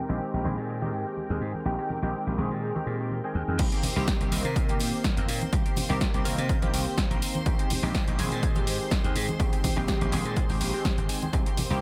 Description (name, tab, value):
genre	filtered disco house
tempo	124 BPM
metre	4/4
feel	swing 54% on 16ths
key	unclear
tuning	A4 = 440 Hz
part	funky polysynth comp	accompaniment	0.0-11.8 s	Eb3 to Bb4	-34 LUFS	equal	chorus, phaser, vintage 12-bit sampler grit, sidechain pumping, low-pass filter, dub echo
part	string machine, full ensemble	sustained chords	0.0-11.8 s	Bb4 to C6	-42 LUFS	equal	ensemble chorus, sidechain pumping, low-pass filter
part	slap bass	bass	0.1-11.8 s	Ab1 to C3	-33 LUFS	equal	sidechain pumping, low-pass filter
part	tambourine and congas	percussion	0.1-11.8 s	none	-39 LUFS	equal	none
part	electronic kick drum	drums	3.6-11.4 s	none	-30 LUFS	equal	overdrive
part	punchy analog drum machine	drums	3.6-11.7 s	crash cymbal, hi-hat, snare drum	-35 LUFS	equal	overdrive, sidechain pumping on hats, low-pass filter on hats, sidechain pumping on cymbals, low-pass filter on cymbals, low-pass filter on snare
room	light reverb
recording	echo-heavy mix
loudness	-27 LUFS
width	mono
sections	0.0-3.6 A section; 3.6-11.8 B section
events	filter sweep 0.0-3.6; drop 3.6-11.8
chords	0.0 Bb13sus4; 3.6 Cm7; 7.5 Bb13sus4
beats	0.20 0.69 1.17 | 1.66 2.14 2.62 3.11 | 3.59 4.08 4.56 5.04 | 5.53 6.01 6.49 6.98 | 7.46 7.95 8.43 8.91 | 9.40 9.88 10.37 10.85 | 11.33